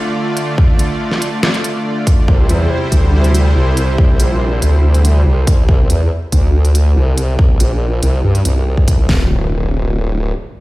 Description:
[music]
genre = heavy wobble dubstep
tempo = 141 BPM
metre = 4/4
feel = half-time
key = unclear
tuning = A4 = 440 Hz
[part]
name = supersaw pad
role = sustained chords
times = 0.0-5.7 s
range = C3 to D5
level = -18 LUFS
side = equal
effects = sidechain pumping
[part]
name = dubstep drum kit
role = drums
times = 0.4-9.0 s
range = hi-hat, snare drum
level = -20 LUFS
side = equal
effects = small room reverb
[part]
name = dubstep drum kit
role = drums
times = 0.6-9.2 s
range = hi-hat, kick drum, snare drum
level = -11 LUFS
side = equal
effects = small room reverb
[part]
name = formant-sweep wobble bass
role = bass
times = 2.3-10.3 s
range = D1 to G2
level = -12 LUFS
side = equal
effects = chorus, overdrive
[part]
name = impact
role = sound effects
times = 9.1-10.6 s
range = none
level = -20 LUFS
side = equal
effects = none
[sound]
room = little or no reverb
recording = played on a big sound system in a bare room, stone room reverb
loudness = -11 LUFS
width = side -19 dB against mid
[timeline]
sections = 0.0-9.1 A section; 9.1-10.6 B section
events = none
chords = 0.0 Dm; 2.3 C; 9.1 N.C.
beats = 0.15 | 0.58 1.00 1.43 1.86 | 2.28 2.71 3.13 3.56 | 3.98 4.41 4.83 5.26 | 5.69 6.11 6.54 6.96 | 7.39 7.81 8.24 8.66 | 9.09 9.52 9.94 10.37

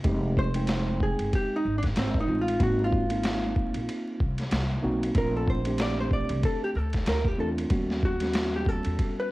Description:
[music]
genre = hip hop, jazz-hop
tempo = 94 BPM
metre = 4/4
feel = swing 60% on 16ths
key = F dorian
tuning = A4 = 440 Hz
[part]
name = mellow tine electric piano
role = accompaniment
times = 0.0-9.3 s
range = G3 to G5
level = -30 LUFS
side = right 1 dB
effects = medium stereo tremolo, cassette tape
[part]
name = upright bass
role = bass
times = 0.0-9.0 s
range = F1 to E2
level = -30 LUFS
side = equal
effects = tube saturation
[part]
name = boom bap sampler-style drum kit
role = drums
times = 0.0-9.2 s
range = hi-hat, kick drum, ride cymbal, snare drum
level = -29 LUFS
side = equal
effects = cassette tape
[part]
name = vintage hollow-body jazz guitar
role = melody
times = 0.4-9.3 s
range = C4 to D5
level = -30 LUFS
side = equal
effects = cassette tape
[sound]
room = digital ambience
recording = home recording on cassette, vinyl crackle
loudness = -24 LUFS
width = side -18 dB against mid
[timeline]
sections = 0.0-9.3 A section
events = hollow-body jazz guitar solo 0.0-9.3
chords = 0.0 Fm7; 2.6 Ab9; 5.2 Bbmaj7; 7.7 Eb7alt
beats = | 0.04 0.68 1.32 1.96 | 2.60 3.24 3.87 4.51 | 5.15 5.79 6.43 7.07 | 7.70 8.34 8.98

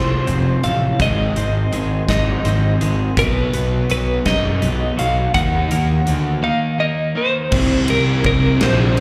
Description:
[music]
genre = quiet-loud alternative rock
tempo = 55 BPM (dotted quarters)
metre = 6/8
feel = straight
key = unclear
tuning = A4 = 441 Hz
[part]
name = clean electric guitar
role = melody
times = 0.0-9.0 s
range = Bb4 to Gb5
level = -24 LUFS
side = equal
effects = tremolo
[part]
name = twelve-string electric guitar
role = arpeggios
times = 0.0-7.5 s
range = Ab2 to F4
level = -29 LUFS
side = equal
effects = analog delay
[part]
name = fuzz guitar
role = riff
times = 0.0-9.0 s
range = F2 to Eb4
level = -25 LUFS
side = equal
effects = distortion
[part]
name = fuzz picked electric bass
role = bass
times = 0.0-8.9 s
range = F1 to F#2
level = -21 LUFS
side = equal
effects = overdrive
[part]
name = huge arena drum kit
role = drums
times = 0.3-9.0 s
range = crash cymbal, hi-hat, kick drum, ride cymbal, snare drum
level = -26 LUFS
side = equal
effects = none
[sound]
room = little or no reverb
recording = live gig heard through the venue's PA, club reverb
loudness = -18 LUFS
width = mono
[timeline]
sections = 0.0-7.5 A section; 7.5-9.0 B section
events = none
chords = 0.0 F; 1.0 Ab; 3.2 B; 5.3 Ebm; 7.5 Cm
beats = | 1.00 2.09 | 3.17 4.26 | 5.35 6.44 | 7.53 8.61

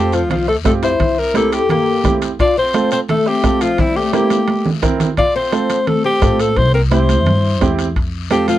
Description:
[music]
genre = latin, cumbia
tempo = 172 BPM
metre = 4/4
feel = straight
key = F major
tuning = A4 = 440 Hz
[part]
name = breathy alto saxophone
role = melody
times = 0.0-8.6 s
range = E4 to D5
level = -17 LUFS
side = left 1 dB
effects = none
[part]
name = oud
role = second line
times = 0.0-8.6 s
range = F3 to F4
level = -21 LUFS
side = left 7 dB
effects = none
[part]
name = clear upright piano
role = accompaniment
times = 0.0-8.6 s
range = C4 to Bb4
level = -20 LUFS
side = right 6 dB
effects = none
[part]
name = upright bass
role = bass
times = 0.0-8.6 s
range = C2 to A2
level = -19 LUFS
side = equal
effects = none
[part]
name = guiro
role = percussion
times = 0.1-8.6 s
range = none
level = -32 LUFS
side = left 15 dB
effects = none
[part]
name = timbales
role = percussion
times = 0.1-8.6 s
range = none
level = -27 LUFS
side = right 6 dB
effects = none
[part]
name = congas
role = percussion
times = 0.3-8.6 s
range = none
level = -21 LUFS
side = right 4 dB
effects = none
[part]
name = bombo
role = percussion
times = 0.5-8.5 s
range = none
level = -20 LUFS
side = equal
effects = none
[sound]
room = little or no reverb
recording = dry, close 1970s-style studio recording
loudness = -13 LUFS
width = side -13 dB against mid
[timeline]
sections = 0.0-8.6 A section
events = drum fill 4.3-5.2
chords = 0.0 F; 1.0 C7; 2.4 F; 3.8 C7; 5.2 F; 6.6 C; 8.0 F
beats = 0.30 0.65 | 1.00 1.35 1.70 2.04 | 2.39 2.74 3.09 3.44 | 3.78 4.13 4.48 4.83 | 5.17 5.52 5.87 6.22 | 6.57 6.92 7.26 7.61 | 7.96 8.31

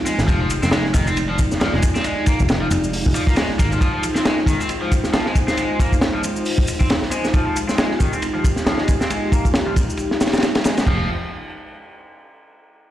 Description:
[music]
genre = breakbeat, breaks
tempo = 136 BPM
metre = 4/4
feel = swing 58% on 16ths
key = F dorian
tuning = A4 = 440 Hz
[part]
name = dark analog pad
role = sustained chords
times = 0.0-11.1 s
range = Ab3 to D5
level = -24 LUFS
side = equal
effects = chorus, sidechain pumping
[part]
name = picked electric bass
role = bass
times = 0.0-3.8, 10.9-11.1 s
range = F1 to F2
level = -22 LUFS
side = equal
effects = none
[part]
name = cranked stack guitar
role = riff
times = 0.1-11.1 s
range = Eb3 to C4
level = -25 LUFS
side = left 1 dB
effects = overdrive, low-pass filter, dub echo
[part]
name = crunchy breakbeat drum kit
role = drums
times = 0.1-11.0 s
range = crash cymbal, hi-hat, kick drum, ride cymbal, snare drum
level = -19 LUFS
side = equal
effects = none
[part]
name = shaker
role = drums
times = 0.1-10.9 s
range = none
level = -34 LUFS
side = left 2 dB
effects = overdrive
[sound]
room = light reverb, small room reverb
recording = played on a big sound system in a bare room, stone room reverb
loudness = -16 LUFS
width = side -12 dB against mid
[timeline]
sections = 0.0-10.9 A section; 10.9-12.6 B section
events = filter sweep on overdriven electric guitar 0.0-10.9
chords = 0.0 Fm7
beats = | 0.28 0.72 1.16 1.60 | 2.05 2.49 2.93 3.37 | 3.81 4.25 4.69 5.13 | 5.58 6.02 6.46 6.90 | 7.34 7.78 8.22 8.66 | 9.11 9.55 9.99 10.43 | 10.87

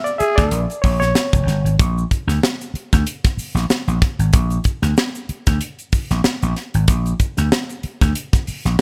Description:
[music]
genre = funk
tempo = 94 BPM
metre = 4/4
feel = swing 56% on 16ths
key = Bb mixolydian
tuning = A4 = 440 Hz
[part]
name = barky reed electric piano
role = stabs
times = 0.0-1.7 s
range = C#5 to E5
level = -24 LUFS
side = equal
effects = overdrive, fast tremolo
[part]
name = crisp fusion drum kit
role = drums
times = 0.1-8.8 s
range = hi-hat, kick drum, snare drum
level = -21 LUFS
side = equal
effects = none
[part]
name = tube shaker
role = percussion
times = 0.1-8.8 s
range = none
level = -38 LUFS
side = equal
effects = none
[part]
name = growling trombone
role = second line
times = 0.2-0.6 s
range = Ab4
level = -22 LUFS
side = equal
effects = none
[part]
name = vintage slap bass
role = bass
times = 0.2-8.8 s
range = F1 to D2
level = -21 LUFS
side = equal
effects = none
[sound]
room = small room ambience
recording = none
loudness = -19 LUFS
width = mono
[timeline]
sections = 0.0-1.8 A section; 1.8-8.8 B section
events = band accent 0.0-1.8; reed electric piano solo 0.0-1.8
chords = 0.0 Bb7#9; 1.8 Bb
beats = 0.52 1.16 | 1.79 2.43 3.06 3.70 | 4.34 4.97 5.61 6.25 | 6.88 7.52 8.15 8.79

